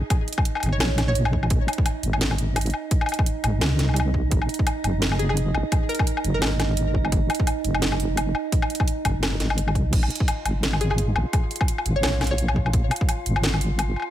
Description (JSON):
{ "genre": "half-time drum and bass", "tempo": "171 BPM", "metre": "4/4", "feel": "swing 57% on 16ths, half-time", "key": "unclear", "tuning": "A4 = 440 Hz", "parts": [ { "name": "metallic inharmonic drone", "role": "texture", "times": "0.0-14.1 s", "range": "Eb4 to F4", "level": "-32 LUFS", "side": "right 6 dB", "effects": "chorus, built-in reverb" }, { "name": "drum and bass drum kit", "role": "drums", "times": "0.1-14.1 s", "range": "crash cymbal, hi-hat, snare drum, woodblock", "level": "-26 LUFS", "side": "left 1 dB", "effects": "overdrive, studio reverb" }, { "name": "electronic kick drum", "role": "drums", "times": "0.1-13.1 s", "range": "none", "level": "-22 LUFS", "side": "equal", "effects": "studio reverb" }, { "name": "deep soft wobble bass", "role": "bass", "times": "0.6-14.0 s", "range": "Gb1 to Db2", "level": "-23 LUFS", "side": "equal", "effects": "chorus" }, { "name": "hollow square pluck", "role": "melody", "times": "0.7-1.4, 5.2-6.8, 10.8-12.7 s", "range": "Ab4 to Db5", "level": "-32 LUFS", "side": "left 1 dB", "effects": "analog chorus, vintage 12-bit sampler grit, ping-pong delay" } ], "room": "digital ambience", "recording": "none", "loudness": "-20 LUFS", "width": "side -12 dB against mid", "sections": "0.0-14.1 A section", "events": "none", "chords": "0.0 N.C.; 4.3 Ab5; 9.9 Bb5", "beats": "| 0.10 0.46 0.81 1.16 | 1.51 1.86 2.21 2.56 | 2.91 3.26 3.61 3.96 | 4.32 4.67 5.02 5.37 | 5.72 6.07 6.42 6.77 | 7.12 7.47 7.82 8.17 | 8.53 8.88 9.23 9.58 | 9.93 10.28 10.63 10.98 | 11.33 11.68 12.03 12.38 | 12.74 13.09 13.44 13.79" }